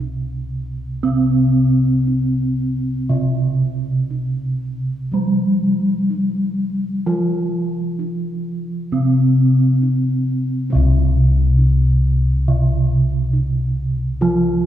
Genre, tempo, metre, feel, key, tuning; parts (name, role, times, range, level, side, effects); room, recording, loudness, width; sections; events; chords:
Javanese gamelan; 58-68 BPM; 4/4; straight; A4 = 440 Hz
gamelan-type bronze metallophone; accompaniment; 0.0-14.7 s; C3 to C4; -19 LUFS; right 2 dB
gamelan-type bossed gongs; bass; 0.0-14.7 s; C2 to F4; -19 LUFS; left 1 dB
wet concert hall reverb, RT60 2.2 s; recorded in a church or concert hall; -16 LUFS; side -11 dB against mid
0.0-10.7 A section; 10.7-14.7 B section